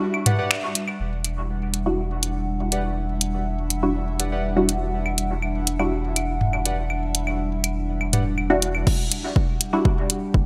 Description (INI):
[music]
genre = dub techno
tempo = 122 BPM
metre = 4/4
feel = straight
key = E minor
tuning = A4 = 439 Hz
[part]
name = warbly tape-like pad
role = sustained chords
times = 0.0-10.5 s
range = G3 to F#5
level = -32 LUFS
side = equal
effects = chorus, built-in reverb, sidechain pumping
[part]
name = filtered dub chord stab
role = stabs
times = 0.0-10.5 s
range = G3 to F#4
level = -28 LUFS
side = equal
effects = chorus, phaser, sidechain pumping, dub echo
[part]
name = electronic claves and toms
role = percussion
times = 0.1-1.0, 5.1-8.8 s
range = none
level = -28 LUFS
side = equal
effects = sidechain pumping on perc, sidechain pumping on toms, dub echo
[part]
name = warbly lo-fi synth keys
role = riff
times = 0.3-8.2 s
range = G4 to F#5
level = -36 LUFS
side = equal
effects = chorus, sidechain pumping, dub echo
[part]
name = punchy analog drum machine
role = drums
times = 0.3-10.2 s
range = crash cymbal, finger snaps, hi-hat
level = -24 LUFS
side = equal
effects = gated reverb
[part]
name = soft dub sub bass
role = bass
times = 1.0-10.5 s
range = E1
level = -29 LUFS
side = equal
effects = sidechain pumping
[part]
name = bubbling stepped-filter texture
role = texture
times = 1.0-10.5 s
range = G3 to E5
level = -39 LUFS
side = equal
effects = chorus, built-in reverb, sidechain pumping
[part]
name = electronic kick drum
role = drums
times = 8.9-10.4 s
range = none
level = -23 LUFS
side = equal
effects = overdrive
[sound]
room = moderate lush hall reverb, RT60 1.7 s, digital ambience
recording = bright 1980s-style digital production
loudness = -23 LUFS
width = mono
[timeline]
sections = 1.0-8.9 A section; 8.9-10.5 B section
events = break 0.0-1.0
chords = 0.0 Em9